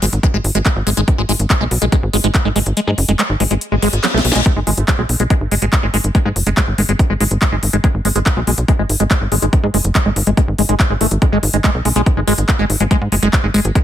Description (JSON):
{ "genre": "psychedelic trance", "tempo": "142 BPM", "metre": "4/4", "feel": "straight", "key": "G# minor", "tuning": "A4 = 440 Hz", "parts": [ { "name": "liquid acid bass", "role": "riff", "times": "0.0-13.8 s", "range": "F#3 to A3", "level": "-19 LUFS", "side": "moving between left 4 dB and right 3 dB", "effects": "phaser, auto-pan, sidechain pumping, dub echo" }, { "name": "tight sequencer bass", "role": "bass", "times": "0.0-13.7 s", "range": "F#1 to G#2", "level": "-17 LUFS", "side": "equal", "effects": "none" }, { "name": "techno drum kit", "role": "drums", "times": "0.0-13.8 s", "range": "handclaps, hi-hat, snare drum", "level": "-20 LUFS", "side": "left 1 dB", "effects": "none" }, { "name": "electronic kick drum", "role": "drums", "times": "0.2-13.8 s", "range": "none", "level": "-14 LUFS", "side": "equal", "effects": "none" }, { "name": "reverse cymbal", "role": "sound effects", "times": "3.8-4.5 s", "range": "none", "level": "-22 LUFS", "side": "left 5 dB", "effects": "none" } ], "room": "little or no reverb", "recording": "none", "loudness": "-13 LUFS", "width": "side -11 dB against mid", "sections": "0.0-13.8 A section", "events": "kick drops out 2.8-4.5; reverse cymbal 3.8-4.5; drum fill 4.0-4.5", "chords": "none" }